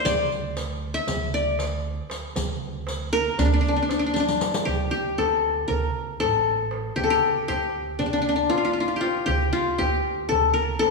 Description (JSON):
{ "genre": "Turkish makam ensemble", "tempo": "234 BPM (eighths)", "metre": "9/8", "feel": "straight", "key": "D makam ussak", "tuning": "A4 = 440 Hz", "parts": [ { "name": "qanun", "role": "melody", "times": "0.0-10.9 s", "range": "D4 to E5-30c", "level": "-22 LUFS", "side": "left 3 dB", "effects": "none" }, { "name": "upright bass", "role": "bass", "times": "0.1-10.9 s", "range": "A1 to D2", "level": "-29 LUFS", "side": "right 2 dB", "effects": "none" }, { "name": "darbuka", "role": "percussion", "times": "0.1-10.9 s", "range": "none", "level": "-34 LUFS", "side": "right 4 dB", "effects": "none" }, { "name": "riq", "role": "percussion", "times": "0.1-4.7 s", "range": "none", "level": "-33 LUFS", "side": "left 2 dB", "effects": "none" } ], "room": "wet recital hall reverb, RT60 1.7 s", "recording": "recorded in a church or concert hall", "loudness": "-22 LUFS", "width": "side -2 dB against mid", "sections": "0.0-4.7 A section; 4.7-10.9 B section", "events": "drum fill 4.2-4.7", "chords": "none", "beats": "| 0.06 0.31 0.57 0.82 1.08 1.34 1.59 1.85 2.10 | 2.36 2.62 2.87 3.13 3.39 3.64 3.90 4.15 4.41 | 4.67 4.92 5.18 5.44 5.69 5.95 6.21 6.46 6.72 | 6.97 7.23 7.49 7.74 8.00 8.26 8.51 8.77 9.03 | 9.28 9.54 9.79 10.05 10.31 10.56 10.82" }